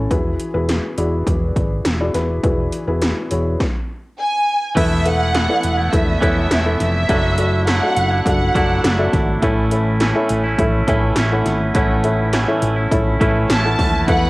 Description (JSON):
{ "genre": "piano-driven pop", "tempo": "103 BPM", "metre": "4/4", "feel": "straight", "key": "A major", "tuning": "A4 = 439 Hz", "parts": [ { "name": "felt-muted upright piano", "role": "accompaniment", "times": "0.0-14.3 s", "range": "A2 to F#5", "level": "-21 LUFS", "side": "left 1 dB", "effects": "cassette tape" }, { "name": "fingered electric bass", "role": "bass", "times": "0.0-14.3 s", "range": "D#1 to A1", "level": "-20 LUFS", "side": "equal", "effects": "none" }, { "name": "80s electronic pad drums", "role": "drums", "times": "0.1-14.2 s", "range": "crash cymbal, hi-hat, kick drum, snare drum", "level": "-20 LUFS", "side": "equal", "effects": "overdrive, cassette tape" }, { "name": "rich studio violin section", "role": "melody", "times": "4.2-9.1, 13.5-14.3 s", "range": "E5 to A5", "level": "-20 LUFS", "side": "right 1 dB", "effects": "cassette tape" }, { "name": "twangy electric guitar", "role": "riff", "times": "4.8-14.3 s", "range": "E2 to E4", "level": "-21 LUFS", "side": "right 2 dB", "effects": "spring reverb, cassette tape" }, { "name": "dark studio violin section", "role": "second line", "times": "14.1-14.3 s", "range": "B4 to B5", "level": "-25 LUFS", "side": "equal", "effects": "cassette tape" } ], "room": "light reverb", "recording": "home recording on cassette", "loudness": "-15 LUFS", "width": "side -21 dB against mid", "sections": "0.0-4.8 A section; 4.8-14.3 B section", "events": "none", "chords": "0.1 Eadd9; 4.8 Esus4; 7.1 Dadd9/F#; 9.4 A" }